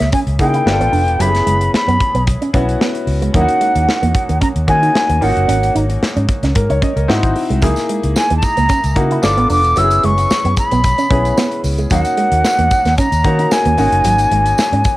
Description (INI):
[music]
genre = polished 1980s jazz-funk pop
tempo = 112 BPM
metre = 4/4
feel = swing 54% on 16ths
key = unclear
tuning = A4 = 439 Hz
[part]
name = silver concert flute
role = melody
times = 0.0-15.0 s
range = F#5 to E6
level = -16 LUFS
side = equal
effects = cassette tape, plate reverb
[part]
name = clear baby grand piano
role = accompaniment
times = 0.0-15.0 s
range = A#3 to D#5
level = -20 LUFS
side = left 2 dB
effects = wide subtle chorus, cassette tape, plate reverb
[part]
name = electric guitar with an envelope filter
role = riff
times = 0.0-14.9 s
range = F#3 to E4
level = -20 LUFS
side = right 4 dB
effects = analog chorus, cassette tape
[part]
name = vintage muted fingered electric bass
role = bass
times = 0.0-14.8 s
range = E1 to D#3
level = -17 LUFS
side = equal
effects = none
[part]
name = modern studio drum kit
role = drums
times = 0.0-15.0 s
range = hi-hat, kick drum, snare drum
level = -19 LUFS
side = equal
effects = none
[part]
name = tambourine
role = percussion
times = 7.6-15.0 s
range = none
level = -31 LUFS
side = right 3 dB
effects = none
[sound]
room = light reverb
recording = home recording on cassette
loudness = -12 LUFS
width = side -17 dB against mid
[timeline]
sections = 0.0-15.0 A section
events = none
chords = 0.0 C#m69; 0.7 G9; 1.2 F#9sus4; 3.3 D#m7; 5.2 G#9sus4; 7.1 G#7b13; 7.6 C#m69; 9.2 G9; 9.8 F#9sus4; 11.9 D#m7; 13.8 G#9sus4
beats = 0.13 0.66 | 1.20 1.73 2.27 2.81 | 3.34 3.88 4.41 4.95 | 5.48 6.02 6.55 7.09 | 7.63 8.16 8.70 9.23 | 9.77 10.30 10.84 11.37 | 11.91 12.44 12.98 13.51 | 14.05 14.58